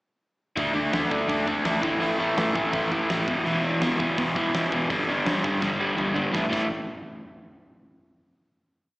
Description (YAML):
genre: punk rock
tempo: 166 BPM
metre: 4/4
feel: straight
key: unclear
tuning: A4 = 440 Hz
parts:
  - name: crunchy overdriven guitar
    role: riff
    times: 0.6-6.7 s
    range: E2 to D4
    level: -23 LUFS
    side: equal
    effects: none
  - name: pure sine sub bass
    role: bass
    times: 0.6-6.7 s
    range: E1 to D2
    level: -46 LUFS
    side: equal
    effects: none
  - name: big rock drum kit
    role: drums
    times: 0.6-6.6 s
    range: crash cymbal, hi-hat, kick drum, snare drum, toms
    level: -32 LUFS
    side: equal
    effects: none
room: moderate club reverb, RT60 0.7 s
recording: live gig heard through the venue's PA, recital hall reverb, small speaker sound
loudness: -22 LUFS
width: side -21 dB against mid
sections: 0.6-6.3 verse; 6.3-7.8 final chord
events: drum fill 5.6-6.3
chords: 0.6 D5; 1.8 A5; 3.3 E5; 4.9 G5; 6.3 A5